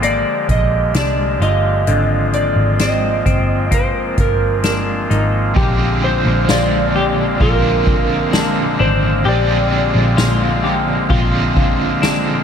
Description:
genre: dream pop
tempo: 65 BPM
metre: 4/4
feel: straight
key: Bb mixolydian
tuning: A4 = 440 Hz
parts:
  - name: electric slide guitar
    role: melody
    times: 0.0-10.2 s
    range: Bb4 to Eb5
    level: -20 LUFS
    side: right 1 dB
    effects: analog delay
  - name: pipe organ, soft reed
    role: sustained chords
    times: 0.0-12.4 s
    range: D3 to F5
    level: -21 LUFS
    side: left 1 dB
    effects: none
  - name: semi-hollow electric guitar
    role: arpeggios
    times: 0.0-12.4 s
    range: D3 to G4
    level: -22 LUFS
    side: left 4 dB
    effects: analog chorus, analog delay
  - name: vintage muted picked electric bass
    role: bass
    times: 0.0-12.4 s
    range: G1 to C2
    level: -18 LUFS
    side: equal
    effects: none
  - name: soft-mallet drum kit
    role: drums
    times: 0.0-12.2 s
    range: hi-hat, kick drum, ride cymbal, snare drum, tambourine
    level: -20 LUFS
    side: equal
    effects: analog delay
  - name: cranked stack guitar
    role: accompaniment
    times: 5.5-12.4 s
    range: Bb2 to Ab4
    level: -20 LUFS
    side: right 4 dB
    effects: overdrive, tremolo, lush chorus
room: moderate echo chamber reverb, RT60 2.4 s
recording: echo-heavy mix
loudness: -13 LUFS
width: side -8 dB against mid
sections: 0.0-5.6 A section; 5.6-12.4 B section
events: none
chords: 0.0 Bb7; 1.9 Ab69; 5.6 Bb9

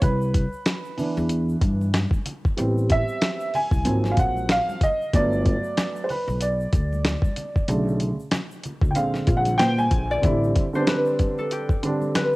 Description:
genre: hip hop, jazz-hop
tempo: 94 BPM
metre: 4/4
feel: swing 58% on 16ths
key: A minor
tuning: A4 = 440 Hz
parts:
  - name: dark upright piano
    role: accompaniment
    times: 0.0-12.4 s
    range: C#3 to G#5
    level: -24 LUFS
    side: right 1 dB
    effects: cassette tape
  - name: upright bass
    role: bass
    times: 0.0-10.5 s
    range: G1 to Bb2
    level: -24 LUFS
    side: equal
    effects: none
  - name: dusty soul sampler-style drum kit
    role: drums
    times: 0.0-12.3 s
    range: hi-hat, kick drum, snare drum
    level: -23 LUFS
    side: equal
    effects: vintage 12-bit sampler grit, cassette tape
  - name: egg shaker and congas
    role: percussion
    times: 0.0-12.4 s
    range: none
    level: -40 LUFS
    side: left 1 dB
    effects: none
  - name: concert harp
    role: melody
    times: 9.6-12.4 s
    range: G4 to D5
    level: -26 LUFS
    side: left 1 dB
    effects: cassette tape
room: small room reverb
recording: home recording on cassette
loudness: -20 LUFS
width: side -20 dB against mid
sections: 0.0-10.2 A section; 10.2-12.4 B section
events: upright piano solo 0.0-10.2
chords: 0.0 Cmaj9; 2.6 Am7; 3.9 G#13; 5.1 Gmaj7; 7.7 Bm7; 9.0 Bb9; 10.2 Am9

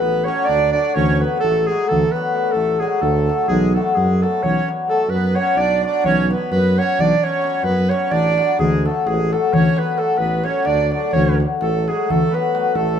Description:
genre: balkan folk, Balkan wedding band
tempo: 259 BPM (eighths)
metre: 11/8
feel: straight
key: unclear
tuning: A4 = 440 Hz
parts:
  - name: warm clarinet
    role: melody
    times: 0.0-13.0 s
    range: G#4 to D5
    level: -21 LUFS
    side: right 3 dB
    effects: none
  - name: accordion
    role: second line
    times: 0.0-13.0 s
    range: G#3 to D4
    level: -25 LUFS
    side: right 4 dB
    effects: none
  - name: cimbalom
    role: accompaniment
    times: 0.0-13.0 s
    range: F#3 to F#4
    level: -22 LUFS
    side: left 5 dB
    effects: none
  - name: dark tuba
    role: bass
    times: 0.0-13.0 s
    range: A1 to F#2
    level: -20 LUFS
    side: right 1 dB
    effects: none
  - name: darbuka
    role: percussion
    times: 0.0-13.0 s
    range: none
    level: -22 LUFS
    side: left 2 dB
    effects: none
room: moderate stone room reverb, RT60 1.0 s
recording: band playing live in one room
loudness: -15 LUFS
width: side -8 dB against mid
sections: 0.0-13.0 A section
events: none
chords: 0.0 D; 3.5 Bm; 8.6 D

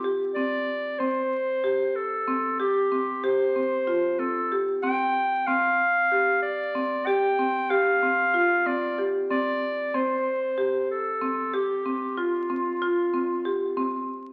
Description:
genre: contemporary instrumental, chamber music in an uneven meter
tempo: 188 BPM (eighths)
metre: 7/8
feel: straight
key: F major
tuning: A4 = 440 Hz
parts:
  - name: bright clarinet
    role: melody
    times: 0.0-14.1 s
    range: F4 to G5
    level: -28 LUFS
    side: equal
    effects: none
  - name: marimba with medium hard mallets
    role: arpeggios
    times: 0.0-14.1 s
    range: C4 to G4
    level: -29 LUFS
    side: equal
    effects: none
room: wet recital hall reverb, RT60 1.4 s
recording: very old 78 rpm record, vinyl crackle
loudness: -25 LUFS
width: mono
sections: 0.0-14.3 A section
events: none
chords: 0.0 C5; 5.5 Fsus2; 7.7 Csus4; 9.9 Am7/C; 12.2 F5

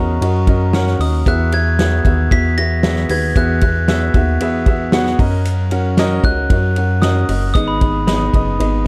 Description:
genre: piano-driven pop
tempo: 114 BPM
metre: 4/4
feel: straight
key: unclear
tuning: A4 = 440 Hz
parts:
  - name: glockenspiel with soft plastic mallets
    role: melody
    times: 0.0-8.9 s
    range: A#5 to B6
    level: -25 LUFS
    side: equal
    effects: none
  - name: warm grand piano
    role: accompaniment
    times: 0.0-8.9 s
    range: G#2 to A#5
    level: -22 LUFS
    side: equal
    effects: none
  - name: chorused synth bass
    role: bass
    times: 0.0-8.9 s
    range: F#1 to F#2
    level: -20 LUFS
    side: equal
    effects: none
  - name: natural country drum kit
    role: drums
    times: 0.2-8.7 s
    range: hi-hat, kick drum, ride cymbal, snare drum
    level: -20 LUFS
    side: equal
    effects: none
room: small room ambience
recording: dark, warm production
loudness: -15 LUFS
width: mono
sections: 0.0-8.9 A section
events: grand piano fill 4.7-5.5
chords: 0.0 F#6; 1.3 Eadd9; 5.2 F#6; 7.5 G#m

